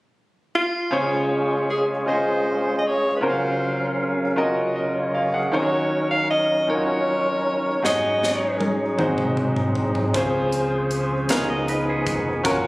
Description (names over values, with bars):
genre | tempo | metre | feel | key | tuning
slow gospel | 52 BPM (dotted quarters) | 6/8 | straight | Db major | A4 = 439 Hz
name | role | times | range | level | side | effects
breathy alto saxophone | melody | 0.5-8.7 s | F4 to F5 | -23 LUFS | equal | none
bright baby grand piano | accompaniment | 0.9-12.7 s | Ab2 to Gb5 | -23 LUFS | equal | none
tonewheel organ | sustained chords | 0.9-12.7 s | Db3 to F5 | -25 LUFS | right 1 dB | slow rotary speaker
crisp fusion drum kit | drums | 7.8-12.6 s | hi-hat, kick drum, snare drum, toms | -26 LUFS | equal | none
fingered electric bass | bass | 10.1-12.7 s | F1 to Db2 | -30 LUFS | equal | none
clean electric guitar | second line | 11.3-12.4 s | Cb4 to F5 | -28 LUFS | right 1 dB | spring reverb
room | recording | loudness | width
light reverb | recorded on a phone in the room, club reverb, compression | -20 LUFS | side -21 dB against mid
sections
0.9-12.7 A section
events
drum fill 7.8-10.1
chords
0.0 N.C.; 0.9 Dbmaj7; 3.2 Gbmaj7/Db; 5.5 Ebm7; 7.8 Ab7sus4; 9.0 Ab7; 10.1 Dbmaj7; 11.3 Db13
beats
| 0.92 2.08 | 3.23 4.38 | 5.54 6.69 | 7.84 8.99 | 10.15 11.30 | 12.45